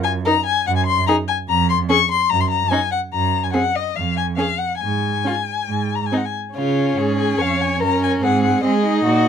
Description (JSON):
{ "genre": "quick classical-period movement for string quartet", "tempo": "145 BPM", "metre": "4/4", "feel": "rubato", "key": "Db major", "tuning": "A4 = 440 Hz", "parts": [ { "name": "warm violin", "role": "melody", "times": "0.0-9.3 s", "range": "Db5 to Db6", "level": "-20 LUFS", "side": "left 9 dB", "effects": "none" }, { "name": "rich cello", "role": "bass", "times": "0.0-9.3 s", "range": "F2 to Ab3", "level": "-22 LUFS", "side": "right 5 dB", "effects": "none" }, { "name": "rich violin", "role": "second line", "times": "0.3-9.3 s", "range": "Eb4 to Db5", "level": "-23 LUFS", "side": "left 2 dB", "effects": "none" }, { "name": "warm viola", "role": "accompaniment", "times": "0.3-9.3 s", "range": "C4 to Eb4", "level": "-21 LUFS", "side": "right 2 dB", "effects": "none" } ], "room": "light reverb", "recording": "none", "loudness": "-17 LUFS", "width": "side -8 dB against mid", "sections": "0.0-6.6 A section; 6.6-9.3 B section", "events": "none", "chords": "0.0 Ebm/Gb; 1.5 Db/F; 2.3 Ebm/Gb (rootless); 3.1 Ab7(no3)/Gb; 4.0 N.C.; 6.6 Db; 8.2 Ab", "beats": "0.26 0.67 1.08 | 1.49 1.89 2.30 2.72 | 3.13 3.54 3.96 4.38 | 4.81 5.25 5.69 6.12 | 6.56 6.98 7.40 7.81 | 8.22 8.64 9.05" }